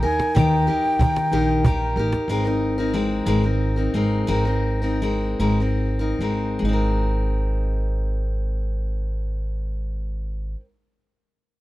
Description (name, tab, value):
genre	acoustic folk duo or small band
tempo	46-62 BPM (dotted quarters)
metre	6/8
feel	straight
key	Ab major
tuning	A4 = 440 Hz
part	baroque flute	melody	0.0-2.0 s	G5 to Ab5	-23 LUFS	equal	none
part	picked steel-string acoustic guitar	accompaniment	0.0-10.7 s	Eb3 to Bb4	-23 LUFS	left 1 dB	none
part	upright bass	bass	0.0-10.5 s	Ab1 to Eb3	-24 LUFS	equal	none
part	cajon	percussion	0.2-2.3 s	none	-20 LUFS	right 1 dB	none
room	small room ambience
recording	dry, close 1970s-style studio recording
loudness	-20 LUFS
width	side -17 dB against mid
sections	0.0-2.3 A section; 2.3-6.6 B section; 6.6-11.6 C section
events	slowing down 2.3-6.6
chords	0.0 Eb; 2.3 Abadd9